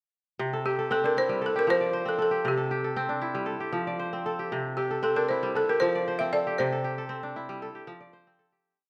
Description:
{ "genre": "west african traditional, West African string and xylophone music", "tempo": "116 BPM", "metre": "4/4", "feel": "straight", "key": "C major", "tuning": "A4 = 440 Hz", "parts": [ { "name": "kora", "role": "arpeggios", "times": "0.4-8.9 s", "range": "C3 to D5", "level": "-32 LUFS", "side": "equal", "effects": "none" }, { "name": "balafon", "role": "melody", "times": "0.7-7.6 s", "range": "G4 to E5", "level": "-29 LUFS", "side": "equal", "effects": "none" } ], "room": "wet recital hall reverb, RT60 1.7 s", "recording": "none", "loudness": "-28 LUFS", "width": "mono", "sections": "0.4-8.6 A section", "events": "fade-out 6.6-8.6", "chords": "0.4 C; 1.4 F; 2.5 C; 3.5 F; 4.5 C; 5.5 F; 6.6 C; 7.6 F" }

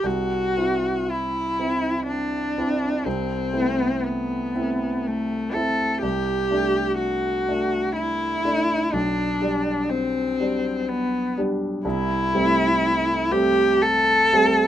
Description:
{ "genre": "classical, romantic duo for cello and grand piano", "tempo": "61 BPM", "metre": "3/4", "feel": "uneven beats, rubato", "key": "unclear", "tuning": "A4 = 441 Hz", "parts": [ { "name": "warm cello", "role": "melody", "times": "0.0-14.7 s", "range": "A3 to A4", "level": "-22 LUFS", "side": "left 1 dB", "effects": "none" }, { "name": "warm grand piano", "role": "accompaniment", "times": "0.0-14.7 s", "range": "B1 to E4", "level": "-25 LUFS", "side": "right 1 dB", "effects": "none" } ], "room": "light reverb", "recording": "close, detailed microphones", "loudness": "-20 LUFS", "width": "side -11 dB against mid", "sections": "0.0-14.7 A section", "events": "none", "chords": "0.0 C; 3.1 Am/C; 6.0 D7/C; 8.9 G/B; 11.8 C6" }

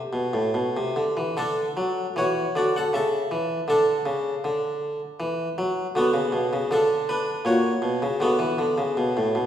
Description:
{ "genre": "classical, baroque-style suite movement for harpsichord", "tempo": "79 BPM", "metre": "3/4", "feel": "rubato", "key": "D major", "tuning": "A4 = 440 Hz", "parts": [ { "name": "harpsichord", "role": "solo", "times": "0.0-9.5 s", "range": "A2 to F#5", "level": "-22 LUFS", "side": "equal", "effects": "none" } ], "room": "wet recital hall reverb, RT60 1.6 s", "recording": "heard from further back in the room", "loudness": "-22 LUFS", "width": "side -10 dB against mid", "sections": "0.0-1.4 A section; 1.4-9.5 A section", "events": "none", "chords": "0.0 G; 1.4 D; 2.9 A/C#; 3.7 D; 6.0 Bm; 7.5 F#/A#; 8.2 Bm" }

